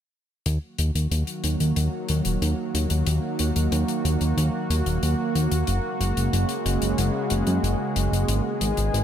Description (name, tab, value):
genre	synthwave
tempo	92 BPM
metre	4/4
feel	straight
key	Eb minor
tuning	A4 = 437 Hz
part	lush unison pad	sustained chords	0.9-9.0 s	Db3 to Ab4	-26 LUFS	right 1 dB	chorus
part	fat analog bass	bass	0.5-9.0 s	Eb1 to Gb2	-23 LUFS	equal	none
part	hi-hat	drums	0.5-9.0 s	none	-32 LUFS	left 6 dB	none
room	light reverb, small room ambience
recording	bright 1980s-style digital production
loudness	-22 LUFS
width	side -9 dB against mid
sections	0.5-9.0 A section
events	filter sweep on analog synth bass 0.5-9.0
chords	0.5 Ebm; 5.7 Gbadd9; 8.3 Abm